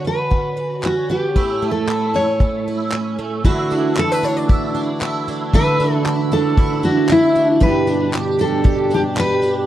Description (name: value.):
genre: acoustic pop.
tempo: 115 BPM.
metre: 4/4.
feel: straight.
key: D major.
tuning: A4 = 440 Hz.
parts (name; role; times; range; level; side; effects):
picked steel-string acoustic guitar; melody; 0.0-9.5 s; E4 to D5; -19 LUFS; left 1 dB; none.
picked plugged-in twelve-string acoustic guitar; accompaniment; 0.0-9.7 s; G2 to G4; -20 LUFS; right 3 dB; ensemble chorus.
modern studio drum kit; drums; 0.3-9.6 s; handclaps, kick drum, tambourine; -16 LUFS; equal; none.
pedal harmonium; sustained chords; 3.4-9.7 s; B2 to G4; -26 LUFS; left 4 dB; none.
room: studio ambience.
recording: dry, close 1970s-style studio recording, lossy compression artefacts.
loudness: -15 LUFS.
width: side -12 dB against mid.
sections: 0.0-3.4 A section; 3.4-9.7 B section.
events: none.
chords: 0.0 Bmadd9/D; 1.4 A; 3.4 Dadd9; 7.6 G.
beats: 0.31 0.83 | 1.36 1.88 2.40 2.92 | 3.45 3.97 4.49 5.01 | 5.53 6.05 6.57 7.09 | 7.62 8.13 8.65 9.18.